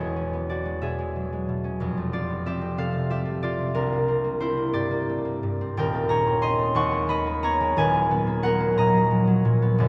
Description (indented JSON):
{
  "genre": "classical, solo harp piece",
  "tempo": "60 BPM (dotted quarters)",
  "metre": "6/8",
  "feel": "uneven beats, rubato",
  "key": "unclear",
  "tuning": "A4 = 440 Hz",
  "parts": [
    { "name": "concert harp", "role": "solo", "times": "0.0-9.9 s", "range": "D#1 to C#6", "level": "-24 LUFS", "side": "equal", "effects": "none" }
  ],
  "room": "wet church reverb, RT60 2.9 s",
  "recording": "recorded in a church or concert hall",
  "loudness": "-24 LUFS",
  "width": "mono",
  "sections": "0.0-9.9 A section",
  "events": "none",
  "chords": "0.0 E13; 1.8 F6; 3.7 C13; 5.8 D#7#11; 6.8 G#m11/D#; 7.8 Bmaj7/D#"
}